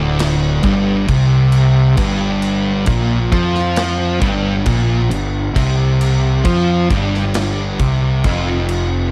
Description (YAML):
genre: stoner and doom metal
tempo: 67 BPM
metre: 4/4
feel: straight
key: unclear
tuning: A4 = 440 Hz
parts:
  - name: thick fuzz guitar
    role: riff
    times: 0.0-9.1 s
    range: D2 to F3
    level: -17 LUFS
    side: equal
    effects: distortion
  - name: fuzz fingered electric bass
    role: bass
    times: 0.0-9.1 s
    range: D1 to F2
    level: -22 LUFS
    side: equal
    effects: overdrive
  - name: big rock drum kit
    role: drums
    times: 0.2-8.9 s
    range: crash cymbal, kick drum, snare drum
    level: -24 LUFS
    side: equal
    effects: none
room: little or no reverb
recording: dark, warm production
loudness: -16 LUFS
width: mono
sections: 0.0-9.1 A section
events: none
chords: 0.0 N.C.; 2.0 Fsus24